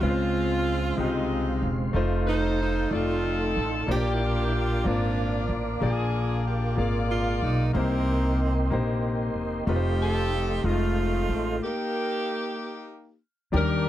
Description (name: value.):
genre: gospel.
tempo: 62 BPM (dotted quarters).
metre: 6/8.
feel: straight.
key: Eb major.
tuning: A4 = 440 Hz.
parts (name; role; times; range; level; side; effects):
breathy tenor saxophone; melody; 0.0-12.9 s; Bb3 to G4; -31 LUFS; right 4 dB; none.
edgy saxophone section; melody; 0.0-13.9 s; Ab3 to D5; -31 LUFS; left 2 dB; none.
clear concert grand piano; accompaniment; 0.0-13.9 s; Bb2 to F5; -29 LUFS; left 4 dB; none.
mellow tonewheel organ; sustained chords; 0.0-13.9 s; Ab3 to D6; -34 LUFS; right 5 dB; slow rotary speaker, chorus vibrato.
upright bass; bass; 0.0-13.9 s; Fb1 to Eb2; -27 LUFS; equal; none.
room: little or no reverb.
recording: dry, close 1970s-style studio recording.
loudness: -23 LUFS.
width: side -13 dB against mid.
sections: 0.0-13.5 A section.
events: stop 11.6-13.5.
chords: 0.0 Dbmaj7; 2.0 F7; 3.9 Bb; 5.8 Bb7; 7.8 Cm7; 9.7 F7; 11.6 Eb/Bb.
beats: | 0.03 0.99 | 1.96 2.92 | 3.89 4.85 | 5.82 6.78 | 7.75 8.71 | 9.68 10.64 | 11.61 12.57 | 13.54.